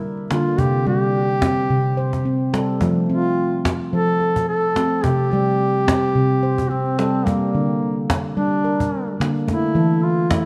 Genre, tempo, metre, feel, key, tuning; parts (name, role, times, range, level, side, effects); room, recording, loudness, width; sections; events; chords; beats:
world meditative, meditative tuned percussion; 108 BPM; 4/4; swing 53% on 16ths; A4 = 440 Hz
warm duduk; melody; 0.0-10.5 s; Bb3 to A4; -24 LUFS; equal; delay
handpan; arpeggios; 0.0-10.5 s; C3 to C5; -22 LUFS; equal
cajon; percussion; 0.2-10.4 s; -27 LUFS; equal
wet echo chamber reverb, RT60 1.6 s, studio ambience; -20 LUFS; mono
0.0-10.5 A section
0.0 Gm; 0.6 C5; 2.8 F; 5.0 C5; 7.3 Gm; 9.5 A5
0.03 | 0.58 1.14 1.70 2.26 | 2.81 3.37 3.93 4.48 | 5.04 5.59 6.15 6.71 | 7.26 7.81 8.37 8.92 | 9.48 10.03